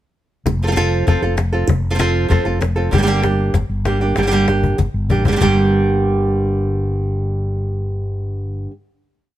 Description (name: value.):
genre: flamenco.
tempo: 193 BPM.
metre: 4/4.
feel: straight.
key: G minor.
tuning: A4 = 440 Hz.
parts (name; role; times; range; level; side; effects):
nylon-string guitar; accompaniment; 0.5-8.7 s; G2 to A4; -18 LUFS; right 2 dB; none.
mellow fretless electric bass; bass; 0.5-8.7 s; F1 to A1; -19 LUFS; equal; none.
cajon; percussion; 0.5-5.5 s; none; -20 LUFS; left 3 dB; none.
room: little or no reverb.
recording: close, detailed microphones.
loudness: -15 LUFS.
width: side -13 dB against mid.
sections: 0.5-5.4 groove; 5.4-7.9 final chord.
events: drum fill 4.2-5.4.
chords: 0.5 F; 2.9 Gm.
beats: | 0.46 0.77 1.07 1.38 | 1.69 2.00 2.31 2.62 | 2.93 3.24 3.55 3.86 | 4.17 4.48 4.79 5.10 | 5.41 5.72 6.03 6.34 | 6.66 6.97 7.28 7.59.